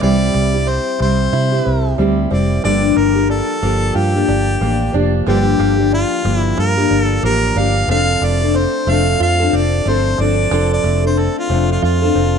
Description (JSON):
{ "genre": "acoustic pop", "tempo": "91 BPM", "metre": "4/4", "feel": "swing 60% on 16ths", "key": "unclear", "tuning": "A4 = 441 Hz", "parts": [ { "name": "clear harmonica", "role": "melody", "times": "0.0-12.4 s", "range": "F4 to F5", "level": "-20 LUFS", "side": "equal", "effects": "none" }, { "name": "fingerpicked steel-string acoustic guitar", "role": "accompaniment", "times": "0.0-12.4 s", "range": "G2 to A4", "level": "-17 LUFS", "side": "left 2 dB", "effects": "none" }, { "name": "open-back banjo", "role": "arpeggios", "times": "0.0-12.4 s", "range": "D3 to F4", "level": "-25 LUFS", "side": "right 7 dB", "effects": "none" }, { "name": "vintage muted fingered electric bass", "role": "bass", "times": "0.0-12.4 s", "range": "F1 to C3", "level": "-17 LUFS", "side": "equal", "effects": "none" } ], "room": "light reverb", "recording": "nothing above 10.7 kHz", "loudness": "-13 LUFS", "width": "side -7 dB against mid", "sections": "0.0-12.4 A section", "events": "none", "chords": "0.0 C; 2.6 Gm7; 7.9 F6" }